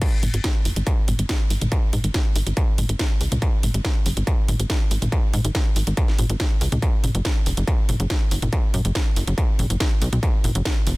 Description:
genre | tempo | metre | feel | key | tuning
driving peak-time techno | 141 BPM | 4/4 | straight | G# minor | A4 = 442 Hz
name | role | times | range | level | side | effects
electronic kick drum | drums | 0.0-10.7 s | none | -21 LUFS | equal | distortion, overdrive, studio reverb
techno drum kit | drums | 0.0-11.0 s | crash cymbal, hi-hat, snare drum, toms | -26 LUFS | equal | overdrive, studio reverb
tight sequencer bass | bass | 0.2-10.9 s | E1 to G#2 | -22 LUFS | equal | sidechain pumping
room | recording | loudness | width
little or no reverb | dense, heavily limited modern master | -19 LUFS | side -22 dB against mid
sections
0.0-11.0 A section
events
none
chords
none

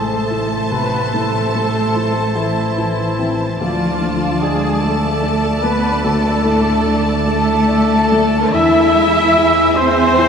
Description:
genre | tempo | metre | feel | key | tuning
cinematic | 49 BPM (dotted quarters) | 6/8 | rubato | A harmonic minor | A4 = 440 Hz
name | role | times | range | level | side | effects
warm studio violin section | melody | 0.0-10.3 s | G#5 to A5 | -25 LUFS | left 2 dB | none
mellow hollow concert flute | second line | 0.0-10.3 s | E5 to E6 | -23 LUFS | equal | none
warm clarinet | second line | 0.0-10.3 s | E4 to E5 | -25 LUFS | equal | none
warm studio violin section | second line | 0.0-10.3 s | C5 to A5 | -25 LUFS | left 2 dB | none
felt-muted upright piano | accompaniment | 0.0-10.3 s | D2 to A4 | -23 LUFS | left 2 dB | none
warm studio viola section | accompaniment | 0.0-10.3 s | E4 to E5 | -21 LUFS | right 1 dB | none
mellow French horn section | sustained chords | 0.0-10.3 s | E3 to E4 | -21 LUFS | left 3 dB | none
concert harp | arpeggios | 0.0-10.3 s | A2 to A5 | -26 LUFS | left 3 dB | none
rich studio double bass section | bass | 0.0-10.3 s | A1 to E2 | -23 LUFS | right 3 dB | none
warm studio cello section | bass | 0.0-10.3 s | E3 to E4 | -21 LUFS | right 3 dB | none
room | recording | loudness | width
wet church reverb, RT60 3.6 s | none | -13 LUFS | side -6 dB against mid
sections
0.0-10.3 A section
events
none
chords
0.0 Am; 3.6 Dm; 8.5 E

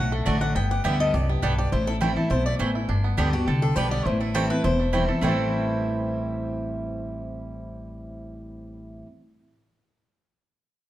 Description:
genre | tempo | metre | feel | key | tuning
bluegrass | 206 BPM | 4/4 | straight | A dorian | A4 = 441 Hz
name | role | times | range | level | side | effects
bluegrass banjo | melody | 0.0-9.1 s | E3 to A4 | -34 LUFS | right 4 dB | none
picked swing-style acoustic guitar | melody | 0.0-9.0 s | E4 to G5 | -30 LUFS | left 3 dB | none
picked steel-string acoustic guitar | accompaniment | 0.0-9.1 s | E2 to G4 | -26 LUFS | equal | none
upright bass | bass | 0.0-9.0 s | E1 to D2 | -28 LUFS | equal | none
mandolin | stabs | 0.3-9.1 s | A3 to A5 | -32 LUFS | right 5 dB | none
room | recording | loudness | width
wet large studio reverb, RT60 1.3 s | dark, warm production | -22 LUFS | side -14 dB against mid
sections
0.0-2.9 A section; 2.9-5.2 B section; 5.2-7.6 C section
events
none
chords
0.0 D; 0.6 G; 1.7 Am7; 2.9 G; 4.1 Am7

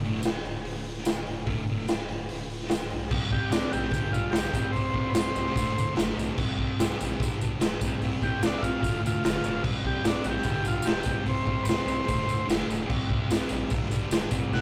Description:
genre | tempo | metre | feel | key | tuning
garage rock duo or trio | 147 BPM | 4/4 | straight | unclear | A4 = 440 Hz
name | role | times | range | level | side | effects
fuzz guitar | riff | 0.0-14.6 s | D2 to C4 | -34 LUFS | equal | distortion
rubbery square bass | bass | 0.0-14.6 s | D1 to D2 | -40 LUFS | equal | overdrive
raw garage drum kit | drums | 0.0-14.6 s | crash cymbal, hi-hat, kick drum, snare drum | -30 LUFS | equal | none
tambourine | percussion | 0.2-14.6 s | none | -45 LUFS | equal | none
overdriven combo organ | melody | 3.3-14.6 s | D4 to F#5 | -33 LUFS | equal | none
room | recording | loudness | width
moderate booth ambience, RT60 0.2 s | rough rehearsal-room recording, tube saturation | -28 LUFS | mono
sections
0.0-3.1 A section; 3.1-14.6 B section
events
none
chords
0.0 D5; 3.1 C5; 3.9 G/B; 4.5 C5; 5.6 D; 6.4 C5; 7.2 G/B; 7.8 C5; 8.8 D; 9.6 C5; 10.5 G/B; 11.1 C5; 12.1 D; 12.9 C5; 13.7 G/B

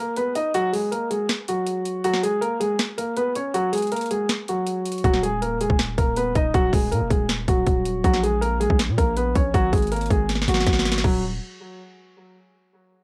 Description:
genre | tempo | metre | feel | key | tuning
hip hop, trap | 160 BPM | 4/4 | half-time | Eb minor | A4 = 438 Hz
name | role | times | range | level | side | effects
dark baby grand piano | melody | 0.0-11.2 s | Gb3 to Eb5 | -25 LUFS | equal | cassette tape
trap drum kit | drums | 0.2-11.1 s | crash cymbal, hi-hat, kick drum, snare drum | -26 LUFS | equal | overdrive, cassette tape
hard-hitting 808-style bass | bass | 5.0-11.4 s | Eb1 to Bb2 | -28 LUFS | equal | none
room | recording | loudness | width
little or no reverb | home recording on cassette | -22 LUFS | mono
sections
0.0-11.0 A section; 11.0-12.5 B section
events
break 0.0-5.0; drum fill 10.3-11.0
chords
0.0 Ebm (rootless); 2.0 N.C.; 3.5 Gbsus2; 5.0 Ebm; 8.0 N.C.; 9.5 Gbsus2/Ab; 11.0 N.C.

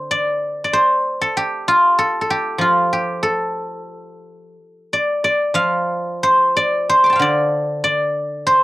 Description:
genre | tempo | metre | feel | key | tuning
chinese traditional, Chinese solo plucked strings | 93 BPM | 4/4 | uneven beats, rubato | unclear | A4 = 441 Hz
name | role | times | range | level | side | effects
guzheng | solo | 0.0-8.6 s | D3 to D6 | -15 LUFS | equal | cassette tape
room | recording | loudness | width
light reverb | home recording on cassette | -15 LUFS | side -19 dB against mid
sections
0.0-5.2 A section; 5.2-8.6 B section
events
none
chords
none

